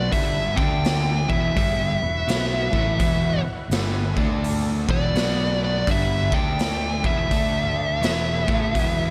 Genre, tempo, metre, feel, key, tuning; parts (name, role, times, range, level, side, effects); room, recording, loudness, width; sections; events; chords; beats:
blues rock power trio and southern rock; 84 BPM; 4/4; swing 62% on 8ths; A4 = 440 Hz
fuzz lead guitar; melody; 0.0-9.1 s; D5 to G5; -28 LUFS; equal; distortion, slapback echo
overdriven tonewheel organ; sustained chords; 0.0-9.1 s; A3 to G#5; -38 LUFS; equal; subtle chorus
overdriven semi-hollow guitar; riff; 0.0-9.1 s; E2 to D4; -28 LUFS; equal; slapback echo
fingered electric bass; bass; 0.0-9.1 s; E1 to D2; -29 LUFS; equal
raw garage drum kit; drums; 0.1-9.0 s; hi-hat, kick drum, snare drum; -28 LUFS; equal
moderate lush hall reverb, RT60 2.6 s; big arena sound; -22 LUFS; mono
0.0-9.1 A section
0.1 E; 0.5 D5; 1.2 E; 4.1 D5; 4.8 E; 5.2 B5; 5.9 E; 6.2 D5; 7.0 E; 7.3 D5; 8.0 E
| 0.13 0.85 1.57 2.28 | 3.00 3.72 4.44 5.16 | 5.88 6.59 7.31 8.03 | 8.75